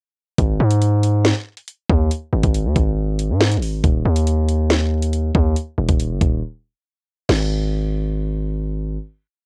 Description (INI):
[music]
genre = hip hop, drill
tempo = 139 BPM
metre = 4/4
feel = half-time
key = unclear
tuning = A4 = 440 Hz
[part]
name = distorted 808-style bass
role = bass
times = 0.4-9.0 s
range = D#1 to G#2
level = -20 LUFS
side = equal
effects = distortion
[part]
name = drill drum kit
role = drums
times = 0.4-7.4 s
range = crash cymbal, hi-hat, kick drum, snare drum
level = -22 LUFS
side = equal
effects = cassette tape
[sound]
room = little or no reverb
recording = home recording on cassette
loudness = -19 LUFS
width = mono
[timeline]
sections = 0.4-7.3 verse; 7.3-9.5 final note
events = break 6.4-7.3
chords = none